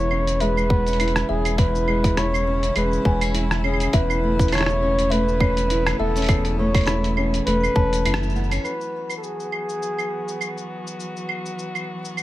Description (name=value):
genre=folktronica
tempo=102 BPM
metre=4/4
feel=swing 56% on 16ths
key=E major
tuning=A4 = 440 Hz
part: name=breathy flugelhorn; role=melody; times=0.0-10.7 s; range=G#4 to C#5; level=-25 LUFS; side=equal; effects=vintage 12-bit sampler grit, digital delay
part: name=warm string quartet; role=sustained chords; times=0.0-12.2 s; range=C#3 to F#4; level=-31 LUFS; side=equal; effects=low-pass filter
part: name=nylon-string guitar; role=arpeggios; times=0.0-9.2 s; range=E2 to E4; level=-26 LUFS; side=left 1 dB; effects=none
part: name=warm sub bass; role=bass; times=0.0-8.6 s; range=E1 to F#1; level=-24 LUFS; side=equal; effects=none
part: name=lo-fi sampler-style drum kit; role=drums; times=0.1-12.2 s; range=claves, hi-hat, rim click, shaker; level=-27 LUFS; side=right 1 dB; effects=none
part: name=kalimba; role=second line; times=0.4-8.0 s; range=E5 to B5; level=-33 LUFS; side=left 2 dB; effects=vintage 12-bit sampler grit, ping-pong delay
part: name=electronic kick drum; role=drums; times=0.7-7.9 s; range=none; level=-20 LUFS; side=equal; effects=overdrive
room=little or no reverb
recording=vinyl crackle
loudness=-19 LUFS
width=side -15 dB against mid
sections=0.0-8.6 A section; 8.6-12.2 B section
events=band accent 8.1; filter sweep on string quartet 8.6-12.2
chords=0.0 C#m7/E; 3.9 Aadd9/E; 8.6 Esus2